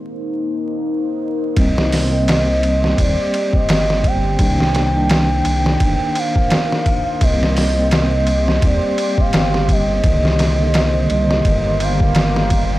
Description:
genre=trip hop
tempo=85 BPM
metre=4/4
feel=swing 57% on 16ths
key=C minor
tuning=A4 = 442 Hz
part: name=deep dark ambient pad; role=sustained chords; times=0.0-12.8 s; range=Eb3 to C5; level=-25 LUFS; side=equal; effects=chorus, built-in reverb, vintage 12-bit sampler grit
part: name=pure breathy sine lead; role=melody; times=1.6-12.8 s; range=D5 to G5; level=-21 LUFS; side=equal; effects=chorus, tape echo
part: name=bell-like tine electric piano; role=accompaniment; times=1.6-12.8 s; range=D3 to D4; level=-22 LUFS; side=equal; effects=tremolo
part: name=dark detuned saw bass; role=bass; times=1.6-12.8 s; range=G1 to Eb2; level=-19 LUFS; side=equal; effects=transformer saturation
part: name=trip hop sampler-style drum kit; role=drums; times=1.6-12.7 s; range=hi-hat, kick drum, ride cymbal, snare drum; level=-18 LUFS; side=equal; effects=none
room=little or no reverb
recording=dry, gritty hardware recording, vinyl crackle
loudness=-14 LUFS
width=side -16 dB against mid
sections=0.0-1.6 A section; 1.6-12.8 B section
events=break 0.0-1.6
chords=0.0 Cm7; 1.6 Cm9; 4.4 Cm7; 7.2 Ebmaj13; 10.0 Cm7

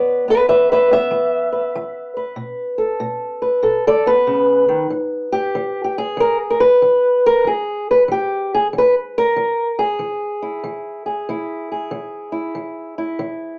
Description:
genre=acoustic country blues, solo or duo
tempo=94 BPM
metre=4/4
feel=swing 65% on 8ths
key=E major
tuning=A4 = 440 Hz
part: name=fingerpicked old ladder-braced acoustic guitar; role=solo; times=0.0-13.6 s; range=B2 to E5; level=-15 LUFS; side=equal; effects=none
room=wet studio ambience, RT60 0.5 s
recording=heard from further back in the room, small speaker sound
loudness=-15 LUFS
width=side -28 dB against mid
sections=0.0-4.9 A section; 4.9-13.6 B section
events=steel-string acoustic guitar solo 0.0-4.9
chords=0.0 E5; 2.4 B7(no3); 4.9 E

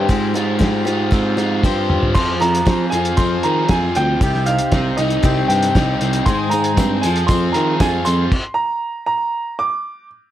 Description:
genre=folk rock and heartland rock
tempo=117 BPM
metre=4/4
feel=straight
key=unclear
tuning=A4 = 440 Hz
part: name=picked steel-string acoustic guitar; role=accompaniment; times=0.0-8.3 s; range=Ab2 to Ab4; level=-22 LUFS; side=left 4 dB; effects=none
part: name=overdriven electric guitar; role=riff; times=0.0-8.3 s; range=C3 to C5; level=-22 LUFS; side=right 2 dB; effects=none
part: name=barky tine electric piano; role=bass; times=0.0-8.2 s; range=C2 to F3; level=-21 LUFS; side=right 1 dB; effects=none
part: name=cloth-damped thuddy drum kit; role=drums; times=0.1-8.4 s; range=crash cymbal, hi-hat, kick drum, snare drum, toms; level=-19 LUFS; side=equal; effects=none
part: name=bright baby grand piano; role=melody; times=2.1-10.1 s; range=Eb5 to D6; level=-21 LUFS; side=right 2 dB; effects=slapback echo
part: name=tonewheel organ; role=sustained chords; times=6.3-8.3 s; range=Eb4 to Ab5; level=-32 LUFS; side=right 1 dB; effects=none
part: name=tambourine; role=percussion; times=6.5-8.2 s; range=none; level=-36 LUFS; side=right 6 dB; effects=none
room=light reverb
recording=none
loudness=-15 LUFS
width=side -12 dB against mid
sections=0.0-2.1 A section; 2.1-10.3 B section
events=drum fill 1.6-2.1; stop 8.3-10.3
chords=0.1 Fmadd9/Ab; 2.1 Fm; 4.2 Cm; 6.3 Ab; 7.0 Fm; 8.3 N.C.

